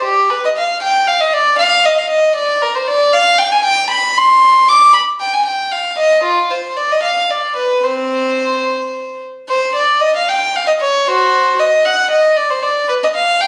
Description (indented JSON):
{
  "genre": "classical, baroque-style suite movement for unaccompanied violin",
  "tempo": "77 BPM (dotted quarters)",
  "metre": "6/8",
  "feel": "rubato",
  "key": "C minor",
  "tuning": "A4 = 440 Hz",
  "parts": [
    { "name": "warm violin", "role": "solo", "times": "0.0-13.5 s", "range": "C4 to D6", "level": "-14 LUFS", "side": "equal", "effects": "none" }
  ],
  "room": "moderate studio reverb, RT60 0.7 s",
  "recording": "recorded on a phone in the room, studio reverb, compression",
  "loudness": "-13 LUFS",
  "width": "mono",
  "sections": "0.0-9.5 A section; 9.5-13.5 A section",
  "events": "none",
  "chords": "none"
}